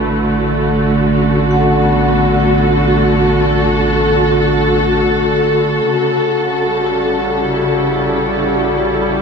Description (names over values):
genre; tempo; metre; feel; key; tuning
ambient; free time; none; none; A mixolydian; A4 = 437 Hz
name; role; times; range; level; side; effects
muted studio string section; sustained chords; 0.0-9.2 s; C#3 to B4; -12 LUFS; equal; none
vibraphone with medium hard mallets; arpeggios; 0.0-5.9 s; B3 to F#5; -23 LUFS; left 2 dB; tape echo
warm sub bass; bass; 0.0-9.2 s; A1; -24 LUFS; equal; tube saturation
glass harmonica; texture; 5.9-9.2 s; F#4 to F#5; -21 LUFS; left 5 dB; none
room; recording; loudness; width
wet huge ambient reverb, RT60 8.1 s; none; -12 LUFS; side -5 dB against mid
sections
0.0-5.9 A section; 5.9-9.2 B section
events
fade-out on vibraphone 0.0-5.9; filter sweep on string section 0.0-5.9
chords
0.0 D/A; 5.9 A7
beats
free time